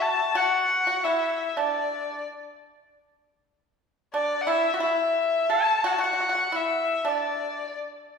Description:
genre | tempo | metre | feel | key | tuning
chinese traditional, Chinese chamber ensemble | 87 BPM | 4/4 | rubato | unclear | A4 = 440 Hz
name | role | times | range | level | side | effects
clear erhu | melody | 0.0-7.8 s | D5 to A5 | -24 LUFS | left 3 dB | none
pipa | second line | 0.0-7.7 s | D4 to A4 | -28 LUFS | right 2 dB | none
room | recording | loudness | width
wet recital hall reverb, RT60 1.7 s | heard from further back in the room | -22 LUFS | side -5 dB against mid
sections
0.0-8.2 A section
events
none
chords
none

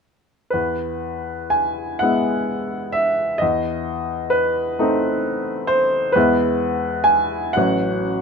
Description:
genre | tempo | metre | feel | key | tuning
classical, romantic nocturne for solo piano | 37-45 BPM (dotted quarters) | 6/8 | rubato | E major | A4 = 440 Hz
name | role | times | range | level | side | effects
clear upright piano | solo | 0.5-8.2 s | A1 to G#5 | -18 LUFS | equal | none
room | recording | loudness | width
moderate studio reverb, RT60 0.8 s | dark, warm production | -18 LUFS | side -5 dB against mid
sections
0.5-8.2 A section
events
none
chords
0.5 E; 3.4 B7b9/E; 6.2 E; 7.6 F#m/A

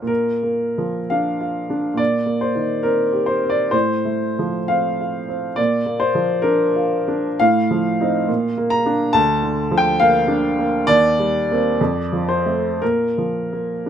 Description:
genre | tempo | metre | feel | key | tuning
classical, romantic character piece for solo piano | 55-72 BPM | 2/4 | rubato | Bb major | A4 = 441 Hz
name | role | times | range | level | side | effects
clear upright piano | solo | 0.0-13.9 s | D2 to Bb5 | -17 LUFS | equal | none
room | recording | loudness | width
light reverb | none | -17 LUFS | side -9 dB against mid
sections
0.1-13.9 A section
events
none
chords
0.1 Bb; 2.0 Cm7/Bb; 3.7 F/A; 5.6 Bb; 7.4 F7/A; 8.3 Bb; 9.1 Bb/D; 10.9 Cm7/Eb; 11.8 F; 12.8 Bb5

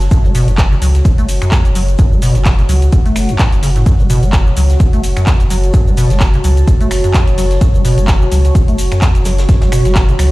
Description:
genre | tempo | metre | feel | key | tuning
acid house | 128 BPM | 4/4 | swing 56% on 16ths | F# minor | A4 = 439 Hz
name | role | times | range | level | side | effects
warm sub bass | bass | 0.0-10.3 s | F#1 to C#2 | -14 LUFS | equal | sidechain pumping
electro analog drum machine | drums | 0.0-10.3 s | finger snaps, handclaps, hi-hat, shaker | -22 LUFS | equal | small room reverb
vintage brush drum kit | drums | 0.0-10.3 s | hi-hat, shaker, snare drum | -33 LUFS | right 1 dB | none
deep dark ambient pad | texture | 0.0-10.3 s | F#4 to B5 | -22 LUFS | equal | chorus, built-in reverb, sidechain pumping
acid bass, square | riff | 0.1-10.3 s | E2 to A3 | -17 LUFS | equal | wide subtle chorus, tape echo
electronic kick drum | drums | 0.1-10.1 s | none | -11 LUFS | equal | small room reverb
room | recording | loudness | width
small room ambience | played on a big sound system in a bare room, stone room reverb | -9 LUFS | side -19 dB against mid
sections
0.0-10.3 A section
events
none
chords
0.0 F#m

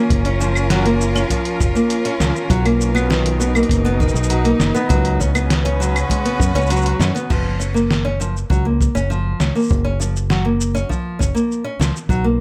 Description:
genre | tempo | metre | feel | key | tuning
folktronica | 100 BPM | 4/4 | straight | F# major | A4 = 441 Hz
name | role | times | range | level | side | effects
rich string quartet | sustained chords | 0.0-7.3 s | B2 to B4 | -25 LUFS | equal | none
nylon-string guitar | arpeggios | 0.0-12.4 s | D#3 to C#4 | -22 LUFS | equal | digital delay
fingered electric bass | bass | 0.1-12.4 s | F#1 to F#2 | -22 LUFS | equal | none
kick drum | drums | 0.1-12.2 s | none | -23 LUFS | equal | none
lo-fi sampler-style drum kit | drums | 0.1-12.2 s | claves, crash cymbal, hi-hat, shaker, snare drum | -26 LUFS | equal | none
room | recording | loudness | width
light reverb | none | -18 LUFS | mono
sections
0.0-7.3 A section; 7.3-12.4 B section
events
none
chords
0.0 F#maj7; 2.5 Bmaj7; 4.9 C#7sus4; 7.3 F#maj7

